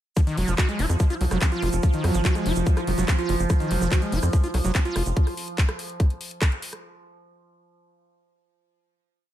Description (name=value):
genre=psychedelic trance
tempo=144 BPM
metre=4/4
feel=straight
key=F phrygian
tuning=A4 = 437 Hz
part: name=overtone-sweeping drone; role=sustained chords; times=0.8-5.2 s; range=F3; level=-30 LUFS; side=right 2 dB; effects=chorus, built-in reverb, sidechain pumping
part: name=screaming distorted acid line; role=riff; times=0.2-5.0 s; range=Eb3 to Gb4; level=-28 LUFS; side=right 1 dB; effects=distortion, chorus, auto-pan, sidechain pumping, tape echo
part: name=big-room dance drum kit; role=drums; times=0.2-6.8 s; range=handclaps, hi-hat, rim click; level=-31 LUFS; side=equal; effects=none
part: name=electronic kick drum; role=drums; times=0.2-6.5 s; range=none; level=-20 LUFS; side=equal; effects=none
part: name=tube shaker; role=percussion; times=0.2-5.1 s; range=none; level=-39 LUFS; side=right 8 dB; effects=none
part: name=tight sequencer bass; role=bass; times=0.4-5.1 s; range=F1 to F2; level=-24 LUFS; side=equal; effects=tube saturation
room=light reverb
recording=none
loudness=-21 LUFS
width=side -12 dB against mid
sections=0.2-6.8 drop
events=drop 0.2-6.8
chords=0.2 F5